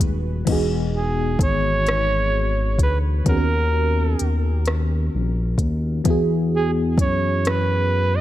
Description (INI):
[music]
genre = slow six-eight R&B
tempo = 43 BPM (dotted quarters)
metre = 6/8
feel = straight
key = unclear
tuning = A4 = 440 Hz
[part]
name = FM electric piano with auto-pan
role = accompaniment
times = 0.0-8.2 s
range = D#3 to B4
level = -26 LUFS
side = equal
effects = phaser
[part]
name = warm studio string section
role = sustained chords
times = 0.0-0.5 s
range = B2 to F#4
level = -43 LUFS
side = equal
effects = none
[part]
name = smooth gliding synth bass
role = bass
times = 0.0-8.2 s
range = D#1 to F#2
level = -21 LUFS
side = left 1 dB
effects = none
[part]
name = smooth R&B drum kit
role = drums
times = 0.0-7.7 s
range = crash cymbal, hi-hat, kick drum, rim click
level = -22 LUFS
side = equal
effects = overdrive
[part]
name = clear flugelhorn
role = melody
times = 1.0-8.2 s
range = G#4 to D#5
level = -24 LUFS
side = right 2 dB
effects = tape echo
[sound]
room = light reverb, digital ambience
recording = none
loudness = -18 LUFS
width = side -14 dB against mid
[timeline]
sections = 0.5-8.2 A section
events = none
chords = 0.5 Emaj9; 3.3 Bmaj9/D#; 6.1 Eadd9